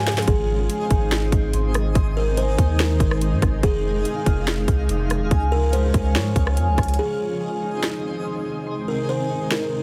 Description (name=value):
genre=hip hop, atmospheric cloud-rap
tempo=143 BPM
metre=4/4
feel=half-time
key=Ab major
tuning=A4 = 441 Hz
part: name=buzzing kalimba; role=melody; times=0.0-9.8 s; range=Ab4 to Db5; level=-30 LUFS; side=equal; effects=digital delay
part: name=granular cloud pad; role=sustained chords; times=0.0-9.8 s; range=C3 to F4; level=-31 LUFS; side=equal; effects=built-in reverb, sidechain pumping
part: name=concert harp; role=arpeggios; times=0.0-9.8 s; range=Db4 to Eb6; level=-33 LUFS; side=equal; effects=digital delay
part: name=soft 808-style bass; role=bass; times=0.0-7.0 s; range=Eb1 to Ab2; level=-24 LUFS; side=equal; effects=none
part: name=twinkling granular texture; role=texture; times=0.1-9.8 s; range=C4 to F5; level=-36 LUFS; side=equal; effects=built-in reverb
part: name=trap drum kit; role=drums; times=0.1-9.6 s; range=hi-hat, kick drum, rim click, snare drum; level=-24 LUFS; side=equal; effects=none
room=little or no reverb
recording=heavily compressed radio sound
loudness=-21 LUFS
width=mono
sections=0.0-7.0 A section; 7.0-9.8 B section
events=drum fill 0.0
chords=0.3 Ab; 3.6 Fm7; 5.3 Db; 7.0 Ab